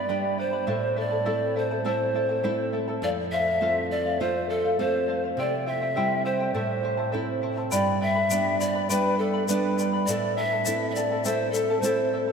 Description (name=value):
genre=andean folk, Andean ensemble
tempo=102 BPM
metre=4/4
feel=straight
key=A minor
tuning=A4 = 441 Hz
part: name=reedy pan flute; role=melody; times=0.0-12.1 s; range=A4 to E5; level=-26 LUFS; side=equal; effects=slapback echo
part: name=charango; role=accompaniment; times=0.0-12.3 s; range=E4 to B5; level=-30 LUFS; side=left 3 dB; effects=none
part: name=nylon-string guitar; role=accompaniment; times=0.0-12.3 s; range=F2 to F4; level=-29 LUFS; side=right 3 dB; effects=none
part: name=tube shaker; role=percussion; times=7.7-12.0 s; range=none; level=-35 LUFS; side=left 7 dB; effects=none
room=wet cathedral reverb, RT60 6.3 s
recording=in a vast, echoing space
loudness=-23 LUFS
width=side -6 dB against mid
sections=0.0-7.7 A section; 7.7-12.3 A section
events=none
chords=0.0 G; 0.7 Am; 3.0 F; 5.4 C; 6.5 Am; 7.7 G; 10.1 Am